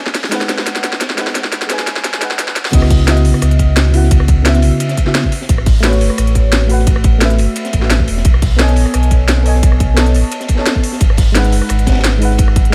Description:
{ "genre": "liquid drum and bass", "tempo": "174 BPM", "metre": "4/4", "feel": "straight", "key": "C# minor", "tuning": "A4 = 443 Hz", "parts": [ { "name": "crunchy breakbeat drum kit", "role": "drums", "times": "0.1-12.6 s", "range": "hi-hat, ride cymbal, snare drum", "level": "-26 LUFS", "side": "equal", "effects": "high-pass filter on cymbals, studio reverb, high-pass filter on hats, high-pass filter on snare, high-pass filter on room" }, { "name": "drum and bass drum kit", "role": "drums", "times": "0.1-12.7 s", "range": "hi-hat, rim click, snare drum", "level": "-20 LUFS", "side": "equal", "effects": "studio reverb" }, { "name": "mellow FM electric piano", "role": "accompaniment", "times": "0.3-12.7 s", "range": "C#3 to A5", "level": "-20 LUFS", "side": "equal", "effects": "chorus, dub echo" }, { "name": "sub bass with octave", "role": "bass", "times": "2.7-12.7 s", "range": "E1 to C#2", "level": "-15 LUFS", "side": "equal", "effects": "none" }, { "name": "electronic kick drum", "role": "drums", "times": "2.7-12.6 s", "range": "none", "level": "-15 LUFS", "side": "equal", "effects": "studio reverb" } ], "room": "small room ambience", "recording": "high-pass filter", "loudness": "-13 LUFS", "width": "mono", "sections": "0.0-2.7 A section; 2.7-12.7 B section", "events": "build-up 0.0-2.7; drum fill 0.0-2.7; drop 2.7-12.7", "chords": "0.0 G#m7; 2.7 C#m11; 5.3 A69; 8.3 B13; 11.0 G#m7" }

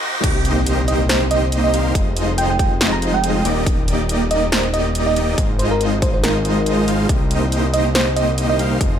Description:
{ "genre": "future bass", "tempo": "140 BPM", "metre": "4/4", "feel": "swing 55% on 16ths, half-time", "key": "C minor", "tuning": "A4 = 440 Hz", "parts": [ { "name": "dense compressed supersaw", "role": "riff", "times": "0.0-9.0 s", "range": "Ab3 to F5", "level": "-21 LUFS", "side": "equal", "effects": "sidechain pumping" }, { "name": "riser and impact", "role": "sound effects", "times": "0.0-1.9 s", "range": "none", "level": "-26 LUFS", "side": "equal", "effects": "none" }, { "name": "fat analog bass", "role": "bass", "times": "0.2-9.0 s", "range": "Eb1 to C2", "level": "-20 LUFS", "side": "equal", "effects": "sidechain pumping" }, { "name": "big-room dance drum kit", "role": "drums", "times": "0.2-8.9 s", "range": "crash cymbal, hi-hat, snare drum", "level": "-22 LUFS", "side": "equal", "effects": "studio reverb" }, { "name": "electronic kick drum", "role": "drums", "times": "0.2-8.9 s", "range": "none", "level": "-19 LUFS", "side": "equal", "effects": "studio reverb" }, { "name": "bell-like FM electric piano", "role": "melody", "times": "0.9-8.8 s", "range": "Bb4 to Bb5", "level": "-22 LUFS", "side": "right 2 dB", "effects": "chorus, tremolo, cassette tape, sidechain pumping, ping-pong delay" } ], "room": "little or no reverb", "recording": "high-pass filter", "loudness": "-15 LUFS", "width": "side -9 dB against mid", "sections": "0.2-9.0 A section", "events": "break 0.0; riser 0.0; drop 0.2-9.0; impact 0.2-2.0", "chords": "0.2 Cm7; 2.0 Fm7; 3.5 Ebmaj7; 5.4 Ab6; 7.1 Cm7" }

